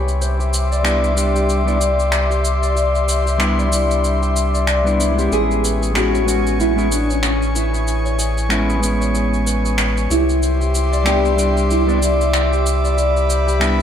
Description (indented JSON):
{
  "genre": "sunset chillout",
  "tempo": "94 BPM",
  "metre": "4/4",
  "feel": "swing 58% on 16ths",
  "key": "unclear",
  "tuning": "A4 = 440 Hz",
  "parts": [
    { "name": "airy breathy pad", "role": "sustained chords", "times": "0.0-13.8 s", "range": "E5 to D6", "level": "-24 LUFS", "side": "left 2 dB", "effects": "chorus" },
    { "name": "concert harp", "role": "arpeggios", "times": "0.0-13.8 s", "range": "G4 to D5", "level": "-23 LUFS", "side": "left 2 dB", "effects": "vintage 12-bit sampler grit, low-pass filter, ping-pong delay" },
    { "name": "warm sub bass", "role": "bass", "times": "0.0-13.8 s", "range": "A1 to C2", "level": "-19 LUFS", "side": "equal", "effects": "none" },
    { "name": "electronic shaker and finger snaps", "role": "drums", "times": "0.1-13.8 s", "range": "none", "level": "-24 LUFS", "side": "equal", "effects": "overdrive" },
    { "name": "mellow electric guitar", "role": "accompaniment", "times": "0.8-13.8 s", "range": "G3 to G4", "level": "-23 LUFS", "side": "moving between left 4 dB and right 3 dB", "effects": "auto-pan, ping-pong delay" },
    { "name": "nylon-string guitar", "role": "melody", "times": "5.0-13.8 s", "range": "C#4 to G#4", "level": "-22 LUFS", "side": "equal", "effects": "lush chorus, ping-pong delay" }
  ],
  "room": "moderate plate reverb, RT60 1.5 s, digital ambience",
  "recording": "dreamy mix soaked in reverb",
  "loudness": "-15 LUFS",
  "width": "side -8 dB against mid",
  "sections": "0.0-13.8 A section",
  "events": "none",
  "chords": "0.0 Cmaj9; 5.3 Amaj9; 10.1 Cmaj9"
}